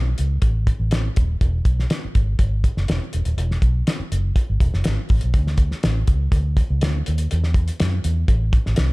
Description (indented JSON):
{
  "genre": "uptempo 1960s-style soul",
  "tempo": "122 BPM",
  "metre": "4/4",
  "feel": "straight",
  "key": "unclear",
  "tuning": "A4 = 437 Hz",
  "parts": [
    { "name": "vintage muted fingered electric bass", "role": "bass", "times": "0.0-8.9 s", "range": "D#1 to F#2", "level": "-20 LUFS", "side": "equal", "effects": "none" },
    { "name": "cloth-damped thuddy drum kit", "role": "drums", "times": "0.2-8.9 s", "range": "hi-hat, kick drum, snare drum", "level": "-20 LUFS", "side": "equal", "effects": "none" }
  ],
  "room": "little or no reverb",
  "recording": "dark, warm production",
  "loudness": "-18 LUFS",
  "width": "side -23 dB against mid",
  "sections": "0.0-5.3 A section; 5.3-8.9 B section",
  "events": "none",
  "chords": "none"
}